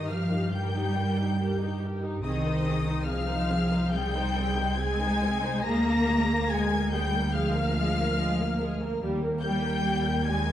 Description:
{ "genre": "classical, slow romantic movement for string orchestra", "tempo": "71 BPM", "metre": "4/4", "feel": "rubato", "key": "Eb major", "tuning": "A4 = 439 Hz", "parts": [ { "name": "warm studio violin section", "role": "melody", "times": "0.0-10.5 s", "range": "Eb6 to Bb6", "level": "-35 LUFS", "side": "left 4 dB", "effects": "none" }, { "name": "warm studio violin section", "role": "second line", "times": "0.0-10.5 s", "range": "Eb5 to Bb5", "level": "-34 LUFS", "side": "left 4 dB", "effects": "none" }, { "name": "rich studio viola section", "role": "accompaniment", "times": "0.0-10.5 s", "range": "G3 to C5", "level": "-33 LUFS", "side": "equal", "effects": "none" }, { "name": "dark studio double bass section", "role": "bass", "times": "0.0-10.5 s", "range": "C2 to G2", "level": "-30 LUFS", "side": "right 1 dB", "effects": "none" }, { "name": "rich studio cello section", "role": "bass", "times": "0.0-10.5 s", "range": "Eb3 to Bb3", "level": "-29 LUFS", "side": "equal", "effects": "none" } ], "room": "moderate scoring stage reverb, RT60 1.7 s", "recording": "dark, warm production, vinyl crackle", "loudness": "-25 LUFS", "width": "side -11 dB against mid", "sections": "0.0-10.5 A section", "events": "none", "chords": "0.0 Eb/G; 2.2 Ab/C; 5.7 Bb7/D; 9.0 Eb", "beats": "0.53 1.39 | 2.24 3.09 3.94 4.80 | 5.67 6.52 7.36 8.20 | 9.04 9.85" }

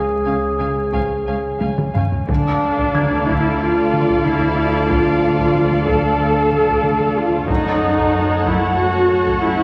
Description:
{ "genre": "cinematic, suspense film score", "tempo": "92 BPM", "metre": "4/4", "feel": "straight", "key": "D hungarian minor", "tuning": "A4 = 436 Hz", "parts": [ { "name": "warm clarinet", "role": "second line", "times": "0.0-1.9 s", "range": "G#4", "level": "-24 LUFS", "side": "equal", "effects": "none" }, { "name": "glass harmonica", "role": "sustained chords", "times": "0.0-9.6 s", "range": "A4 to A5", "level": "-29 LUFS", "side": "equal", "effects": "none" }, { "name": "muted studio cello section", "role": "riff", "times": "0.0-9.6 s", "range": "F#2 to D4", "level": "-30 LUFS", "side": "equal", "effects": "none" }, { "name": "deep rumbling drone", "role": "drone", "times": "0.0-9.6 s", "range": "F#1 to D2", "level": "-32 LUFS", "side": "equal", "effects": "none" }, { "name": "muted chamber violin section", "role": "melody", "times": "0.2-9.6 s", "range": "F5 to G#5", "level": "-31 LUFS", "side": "equal", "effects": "none" }, { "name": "muted chamber violin section", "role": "second line", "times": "0.3-9.6 s", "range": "A4 to E#5", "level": "-29 LUFS", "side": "equal", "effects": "none" }, { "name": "muted chamber viola section", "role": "accompaniment", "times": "0.3-9.6 s", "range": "C#4 to A4", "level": "-20 LUFS", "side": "equal", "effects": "none" }, { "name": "muted studio double bass section", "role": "bass", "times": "0.3-9.6 s", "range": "F#1 to D2", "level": "-30 LUFS", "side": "equal", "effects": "none" }, { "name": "muted symphonic cello section", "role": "bass", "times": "0.3-9.6 s", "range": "C#2 to F#2", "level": "-30 LUFS", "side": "equal", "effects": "none" }, { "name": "mellow French horn section", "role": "sustained chords", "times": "0.9-9.6 s", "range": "E#3 to D4", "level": "-31 LUFS", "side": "equal", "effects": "none" }, { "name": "solo taiko drums", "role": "drums", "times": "0.9-9.6 s", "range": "none", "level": "-27 LUFS", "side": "equal", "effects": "none" }, { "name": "muted chamber violin section", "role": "texture", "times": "2.3-9.6 s", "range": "A5 to A6", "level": "-35 LUFS", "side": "equal", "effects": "none" }, { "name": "felt-muted upright piano", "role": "texture", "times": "2.9-7.5 s", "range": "G#6", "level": "-34 LUFS", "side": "equal", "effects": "none" } ], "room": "wet scoring stage reverb, RT60 1.4 s", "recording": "vinyl crackle", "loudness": "-17 LUFS", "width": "mono", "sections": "0.0-2.3 A section; 2.3-9.6 B section", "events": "drum fill 1.6-2.3", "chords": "0.0 C#; 2.3 Dm; 7.5 F#m", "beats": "0.26 0.93 1.61 | 2.29 2.94 3.60 4.25 | 4.90 5.55 6.20 6.85 | 7.49 8.13 8.78 9.42" }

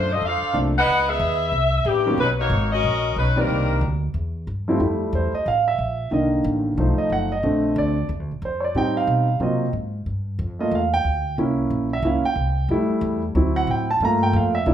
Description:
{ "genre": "jazz, big band swing", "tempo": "183 BPM", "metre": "4/4", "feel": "swing 62% on 8ths", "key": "F major from 4.8 s", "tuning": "A4 = 440 Hz", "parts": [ { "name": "mellow saxophone section", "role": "melody", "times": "0.0-3.8 s", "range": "E3 to Gb5", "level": "-20 LUFS", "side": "left 2 dB", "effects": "none" }, { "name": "upright bass", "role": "bass", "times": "0.0-14.7 s", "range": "F#1 to C3", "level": "-24 LUFS", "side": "equal", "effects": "none" }, { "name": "warm concert grand piano", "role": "accompaniment", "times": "0.5-14.7 s", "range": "D3 to Bb5", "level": "-21 LUFS", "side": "right 2 dB", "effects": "none" } ], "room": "wet large studio reverb, RT60 0.8 s", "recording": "band playing live in one room", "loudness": "-19 LUFS", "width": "side -10 dB against mid", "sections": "0.0-4.8 A section; 4.8-14.7 B section", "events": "grand piano solo 4.8-14.7", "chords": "0.0 Bbmaj9; 0.9 Dbm9; 1.5 C13; 2.2 Bmaj9; 3.5 Cm9; 4.2 C; 4.8 Fmaj9; 6.1 Cm7; 6.8 B7#11; 7.4 Bbmaj7; 8.8 Am7b5; 9.4 Ab13; 10.1 Gm7; 11.4 C7b9; 12.7 Fmaj9; 13.4 D7; 14.0 Gm7", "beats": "0.22 0.55 | 0.87 1.20 1.53 1.86 | 2.18 2.51 2.84 3.17 | 3.50 3.82 4.15 4.48 | 4.81 5.14 5.46 5.79 | 6.12 6.45 6.78 7.11 | 7.44 7.76 8.09 8.42 | 8.75 9.08 9.41 9.74 | 10.07 10.39 10.72 11.05 | 11.38 11.71 12.04 12.37 | 12.70 13.03 13.36 13.68 | 14.01 14.34 14.67" }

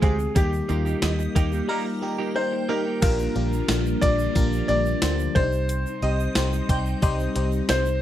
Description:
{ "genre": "1980s-style pop", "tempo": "90 BPM", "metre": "4/4", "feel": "straight", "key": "unclear", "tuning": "A4 = 440 Hz", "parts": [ { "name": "clear grand piano", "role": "melody", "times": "0.0-8.0 s", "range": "G4 to D5", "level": "-28 LUFS", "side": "left 1 dB", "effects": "none" }, { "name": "FM electric piano", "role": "accompaniment", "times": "0.0-8.0 s", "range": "Bb2 to C5", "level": "-28 LUFS", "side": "left 3 dB", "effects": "chorus, phaser" }, { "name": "phased string machine", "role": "sustained chords", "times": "0.0-8.0 s", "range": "C3 to F4", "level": "-33 LUFS", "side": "right 1 dB", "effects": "ensemble chorus, phaser" }, { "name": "direct-recorded clean electric guitar", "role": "riff", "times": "0.0-3.0 s", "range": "Ab3 to G4", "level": "-31 LUFS", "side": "right 8 dB", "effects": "lush chorus, tape echo" }, { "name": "vintage muted fingered electric bass", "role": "bass", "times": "0.0-8.0 s", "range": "Bb1 to Eb2", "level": "-25 LUFS", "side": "equal", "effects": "none" }, { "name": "gated 80s digital drum machine", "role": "drums", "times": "0.0-7.8 s", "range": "crash cymbal, hi-hat, kick drum, snare drum, tambourine", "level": "-23 LUFS", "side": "equal", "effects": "gated reverb, gated reverb snare" }, { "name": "egg shaker", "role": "percussion", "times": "0.2-8.0 s", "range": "none", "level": "-46 LUFS", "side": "right 16 dB", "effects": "none" }, { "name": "shimmering bell with halo", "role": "second line", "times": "1.0-7.5 s", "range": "Eb5 to Bb5", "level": "-35 LUFS", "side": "right 4 dB", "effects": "ensemble chorus, tape echo" } ], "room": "little or no reverb", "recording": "dry, close 1970s-style studio recording", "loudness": "-21 LUFS", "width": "side -12 dB against mid", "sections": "0.0-3.0 A section; 3.0-8.0 A section", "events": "break 1.7-3.0", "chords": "0.4 Eb; 3.0 Bb6; 5.4 Cm", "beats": "| 0.36 1.03 1.69 2.36 | 3.03 3.69 4.36 5.03 | 5.69 6.36 7.03 7.69" }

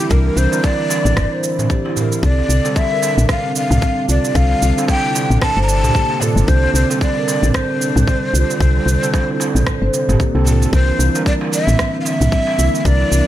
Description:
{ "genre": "organic downtempo", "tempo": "113 BPM", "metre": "4/4", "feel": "swing 58% on 16ths", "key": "unclear", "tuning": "A4 = 440 Hz", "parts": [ { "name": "breathy ney", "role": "melody", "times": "0.0-13.3 s", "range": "G4 to Bb5", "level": "-20 LUFS", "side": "equal", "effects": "vintage 12-bit sampler grit, digital delay" }, { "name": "mellow tine electric piano", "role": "accompaniment", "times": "0.0-13.3 s", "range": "D3 to Bb4", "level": "-23 LUFS", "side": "right 3 dB", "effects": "sidechain pumping, tape echo" }, { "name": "warm analog pad", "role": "sustained chords", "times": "0.0-13.3 s", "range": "C3 to E4", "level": "-27 LUFS", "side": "left 1 dB", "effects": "chorus, sidechain pumping" }, { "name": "electronic shaker and rim click", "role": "drums", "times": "0.0-13.2 s", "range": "none", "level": "-25 LUFS", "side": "right 3 dB", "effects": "none" }, { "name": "marimba with soft mallets", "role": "arpeggios", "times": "0.1-13.3 s", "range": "G3 to C5", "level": "-23 LUFS", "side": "equal", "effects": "tape echo" }, { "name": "woody FM bass", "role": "bass", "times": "0.1-13.2 s", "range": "G1 to C2", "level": "-15 LUFS", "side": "left 1 dB", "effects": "none" }, { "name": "electronic kick drum", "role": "drums", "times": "0.1-13.0 s", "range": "none", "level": "-18 LUFS", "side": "left 1 dB", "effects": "overdrive" }, { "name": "darbuka", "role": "percussion", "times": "0.3-13.1 s", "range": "none", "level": "-25 LUFS", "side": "right 3 dB", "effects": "none" } ], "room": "light reverb", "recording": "none", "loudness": "-13 LUFS", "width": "side -13 dB against mid", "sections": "0.0-10.7 A section; 10.7-13.3 A section", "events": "none", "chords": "0.0 C9; 2.2 Bbmaj9; 10.7 C9", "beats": "| 0.11 0.64 1.17 1.70 | 2.23 2.76 3.29 3.82 | 4.36 4.88 5.42 5.95 | 6.48 7.01 7.54 8.07 | 8.60 9.13 9.66 10.20 | 10.73 11.26 11.79 12.32 | 12.85" }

